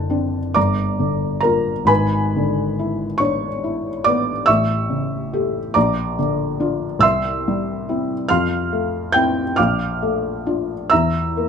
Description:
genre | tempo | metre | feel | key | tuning
classical, romantic nocturne for solo piano | 43-50 BPM (dotted quarters) | 12/8 | rubato | unclear | A4 = 440 Hz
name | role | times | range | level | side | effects
felt-muted upright piano | solo | 0.0-11.5 s | F#1 to A6 | -17 LUFS | equal | none
room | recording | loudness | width
light reverb | none | -17 LUFS | side -6 dB against mid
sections
0.0-11.5 A section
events
none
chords
0.0 D7/F#; 0.6 Gm7; 1.9 E7/G#; 4.5 A7; 5.8 Bb; 7.0 C; 8.3 Fmaj7; 9.6 Bbmaj7; 10.9 E(b5, no3)

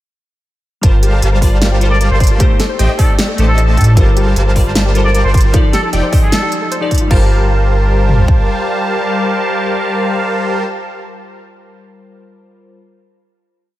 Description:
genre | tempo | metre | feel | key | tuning
future bass | 153 BPM | 4/4 | half-time | G minor | A4 = 440 Hz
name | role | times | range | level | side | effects
glassy digital keys | accompaniment | 0.8-12.8 s | F3 to A5 | -22 LUFS | left 2 dB | chorus, sidechain pumping, diffuse ambient delay
soft round pluck | arpeggios | 0.8-7.3 s | F4 to G5 | -26 LUFS | left 3 dB | chorus, sidechain pumping, diffuse ambient delay
big bright polysynth | riff | 0.8-10.6 s | F3 to A5 | -18 LUFS | equal | sidechain pumping, diffuse ambient delay
saturated sub bass | bass | 0.8-8.2 s | F1 to A2 | -12 LUFS | equal | sidechain pumping
big-room dance drum kit | drums | 0.8-8.4 s | kick drum, toms | -12 LUFS | equal | none
pop drum kit | drums | 0.8-7.2 s | crash cymbal, hi-hat, snare drum | -20 LUFS | equal | none
trumpet with straight mute | melody | 1.9-6.5 s | A4 to D5 | -21 LUFS | equal | sidechain pumping, analog delay
room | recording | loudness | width
light reverb | none | -10 LUFS | side -15 dB against mid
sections
0.8-7.1 drop; 7.1-10.2 final chord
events
drop 0.8-7.1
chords
0.8 Gm11; 2.4 Am7b5; 4.0 Gm11; 5.5 F13; 7.1 Gm11

